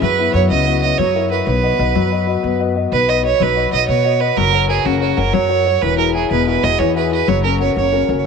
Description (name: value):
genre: celtic folk, Celtic slip jig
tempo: 124 BPM (dotted quarters)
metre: 9/8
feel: straight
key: B major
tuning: A4 = 439 Hz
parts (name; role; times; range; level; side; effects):
- rich fiddle; melody; 0.0-8.2 s; F#4 to D#5; -17 LUFS; right 10 dB; tape echo
- warm upright piano; accompaniment; 0.0-8.3 s; B2 to D#5; -18 LUFS; left 10 dB; none
- upright bass; bass; 0.0-8.2 s; E1 to B2; -20 LUFS; left 1 dB; none
room: wet spring reverb, RT60 2.7 s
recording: 1960s-style stereo with parts hard left and right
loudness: -13 LUFS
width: side -5 dB against mid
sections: 0.0-2.9 A section; 2.9-8.3 B section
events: none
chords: 0.0 F#7sus4; 1.0 F#7; 1.5 B; 4.4 F#; 5.8 Eadd9; 7.3 F#